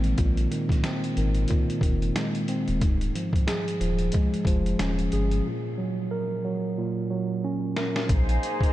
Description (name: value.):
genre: hip hop, boom-bap hip-hop.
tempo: 91 BPM.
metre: 4/4.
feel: swing 59% on 16ths.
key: Bb minor.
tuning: A4 = 439 Hz.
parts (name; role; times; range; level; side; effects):
mellow tine electric piano; accompaniment; 0.0-8.1 s; Ab2 to Bb4; -27 LUFS; right 1 dB; high-pass filter, low-pass filter.
warm sub bass; bass; 0.0-8.4 s; D1 to Bb1; -26 LUFS; equal; none.
trip hop sampler-style drum kit; drums; 0.0-8.7 s; hi-hat, kick drum, snare drum; -27 LUFS; equal; none.
dark symphonic string section; sustained chords; 8.1-8.7 s; Bb3 to C5; -29 LUFS; equal; high-pass filter, low-pass filter.
room: moderate cathedral reverb, RT60 6.4 s.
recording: dreamy mix soaked in reverb.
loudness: -23 LUFS.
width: side -14 dB against mid.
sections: 0.0-8.1 A section.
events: break 5.5-8.1; drum fill 7.4-8.1.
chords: 0.0 Bb9sus4; 2.8 Eb9sus4; 5.5 Gb/Bb; 8.1 Bb9sus4.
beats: | 0.18 0.84 1.50 2.16 | 2.82 3.48 4.14 4.80 | 5.46 6.12 6.77 7.43 | 8.09.